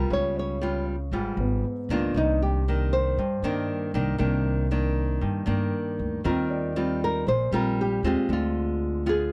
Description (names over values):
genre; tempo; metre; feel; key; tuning
bossa nova; 117 BPM; 4/4; straight; Eb major from 6.2 s; A4 = 442 Hz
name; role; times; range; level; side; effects
nylon-string guitar; melody; 0.0-9.3 s; Eb4 to Db5; -30 LUFS; equal; none
nylon-string guitar; accompaniment; 0.0-9.3 s; G2 to F4; -30 LUFS; equal; none
upright bass; bass; 0.0-9.3 s; Ab1 to G2; -30 LUFS; equal; none
dark grand piano; accompaniment; 1.4-2.4, 6.5-8.3 s; Cb4 to D5; -36 LUFS; equal; none
room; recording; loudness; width
light reverb; dry, close 1970s-style studio recording; -26 LUFS; mono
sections
0.0-6.2 A section; 6.2-9.3 B section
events
none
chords
0.1 Db7#11; 2.1 Cm9; 6.2 Eb69; 8.3 Dm7b5